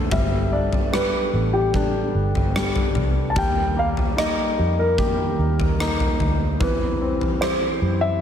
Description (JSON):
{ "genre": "pop ballad", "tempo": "74 BPM", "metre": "4/4", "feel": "straight", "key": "unclear", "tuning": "A4 = 440 Hz", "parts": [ { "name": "clear grand piano", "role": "accompaniment", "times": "0.0-8.2 s", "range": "D3 to G4", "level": "-27 LUFS", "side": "left 5 dB", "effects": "slapback echo" }, { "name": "nylon-string guitar", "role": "arpeggios", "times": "0.0-8.2 s", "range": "E2 to C5", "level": "-29 LUFS", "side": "right 5 dB", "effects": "none" }, { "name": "dark baby grand piano", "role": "melody", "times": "0.1-8.2 s", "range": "G4 to A5", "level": "-25 LUFS", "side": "left 1 dB", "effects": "slapback echo, digital delay" }, { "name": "vintage muted fingered electric bass", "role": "bass", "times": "0.1-8.2 s", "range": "G1 to F#2", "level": "-24 LUFS", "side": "equal", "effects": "none" }, { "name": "huge arena drum kit", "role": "drums", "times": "0.1-7.6 s", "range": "kick drum, rim click, toms", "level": "-24 LUFS", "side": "equal", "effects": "none" } ], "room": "moderate lush hall reverb, RT60 2.9 s", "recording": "big arena sound", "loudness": "-19 LUFS", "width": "side -8 dB against mid", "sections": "0.0-8.2 A section", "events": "none", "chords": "0.1 Gadd9; 3.4 Eb; 6.6 C/E", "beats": "| 0.12 0.94 1.75 2.56 | 3.37 4.18 4.99 5.80 | 6.61 7.42" }